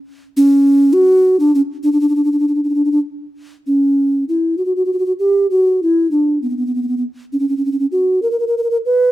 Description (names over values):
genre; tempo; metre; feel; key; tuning
italian folk; 66 BPM (dotted quarters); 6/8; straight; D major, B harmonic minor from 3.7 s; A4 = 440 Hz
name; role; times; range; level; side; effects
bass ocarina; solo; 0.4-9.1 s; B3 to B4; -13 LUFS; equal; none
room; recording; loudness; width
light reverb; close, detailed microphones; -13 LUFS; side -15 dB against mid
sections
0.0-3.7 A section; 3.7-9.1 B section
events
none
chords
none